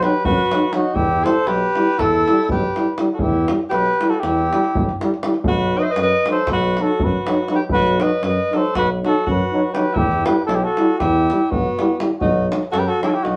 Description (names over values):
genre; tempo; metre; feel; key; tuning
balkan folk, Balkan brass band; 240 BPM (eighths); 9/8; straight; B phrygian dominant; A4 = 435 Hz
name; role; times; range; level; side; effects
mellow cornet; melody; 0.0-13.4 s; F#4 to E5; -23 LUFS; equal; none
clear alto saxophone; second line; 0.0-13.4 s; B3 to C5; -26 LUFS; equal; none
bright trombone; accompaniment; 0.0-13.1 s; F#3 to G3; -28 LUFS; equal; none
mellow euphonium; accompaniment; 0.0-13.1 s; D#4 to E4; -24 LUFS; equal; none
warm tuba; bass; 0.0-13.4 s; B1 to F#2; -25 LUFS; equal; none
davul; percussion; 0.0-13.4 s; none; -28 LUFS; equal; none
room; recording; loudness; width
wet studio reverb, RT60 0.5 s; band playing live in one room; -18 LUFS; mono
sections
0.0-13.4 A section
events
none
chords
0.0 B; 1.0 Em; 5.5 B; 10.0 Em; 12.2 B